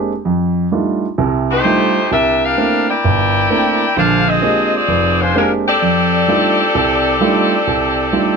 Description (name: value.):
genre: jazz.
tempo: 130 BPM.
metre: 4/4.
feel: swing 67% on 8ths.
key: F mixolydian.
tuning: A4 = 442 Hz.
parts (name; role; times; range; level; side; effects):
warm grand piano; accompaniment; 0.0-8.4 s; F1 to G4; -16 LUFS; right 3 dB; none.
clear saxophone section; melody; 1.5-8.4 s; Ab3 to G5; -14 LUFS; left 2 dB; none.
room: light reverb.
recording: close, detailed microphones.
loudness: -12 LUFS.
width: side -5 dB against mid.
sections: 0.0-8.4 A section.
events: none.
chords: 0.3 F13; 2.1 C13; 4.0 Bb13; 5.8 F13.